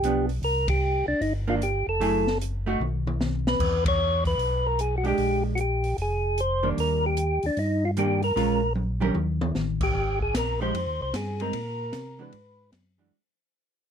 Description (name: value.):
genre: soul jazz organ trio.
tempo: 151 BPM.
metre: 4/4.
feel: swing 65% on 8ths.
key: unclear.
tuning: A4 = 442 Hz.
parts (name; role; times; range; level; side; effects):
percussive tonewheel organ; melody; 0.0-12.7 s; D4 to Db5; -26 LUFS; equal; slow rotary speaker.
vintage hollow-body jazz guitar; accompaniment; 0.0-13.1 s; Eb3 to Bb4; -28 LUFS; right 4 dB; none.
mellow tonewheel organ; bass; 0.0-13.1 s; F1 to C3; -28 LUFS; equal; chorus vibrato, slow rotary speaker.
open jazz drum kit; drums; 0.0-12.8 s; crash cymbal, hi-hat, kick drum, ride cymbal, snare drum, toms; -30 LUFS; left 1 dB; none.
room: little or no reverb.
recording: close, detailed microphones.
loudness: -23 LUFS.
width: side -8 dB against mid.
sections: 0.0-10.0 A section; 10.0-13.1 B section.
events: band accent 0.6, 3.8; drum fill 2.8-3.6, 8.8-9.6; fade-out 10.0-13.1.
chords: 0.4 C7(no3); 2.0 Gbm9; 2.8 N.C.; 3.6 E5; 5.2 Bb6; 6.8 Ebmaj7; 8.4 Bbm7; 9.2 Eb; 10.0 Absus2; 10.7 Fm9; 11.5 Bbsus2; 12.3 E9.